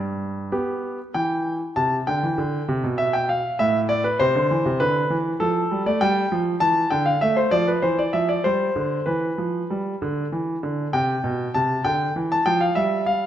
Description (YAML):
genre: classical-period piano sonatina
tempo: 98 BPM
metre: 4/4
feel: straight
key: C major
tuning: A4 = 440 Hz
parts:
  - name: clear concert grand piano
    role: solo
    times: 0.0-13.3 s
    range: G2 to A5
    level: -20 LUFS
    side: equal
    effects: none
room: moderate recital hall reverb, RT60 1.4 s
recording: lossy compression artefacts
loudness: -20 LUFS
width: side -10 dB against mid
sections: 0.0-1.2 A section; 1.2-13.3 B section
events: none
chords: 0.0 G; 1.2 C; 3.6 Am; 4.8 Dm; 6.0 G5; 7.2 A5; 8.5 G; 10.9 C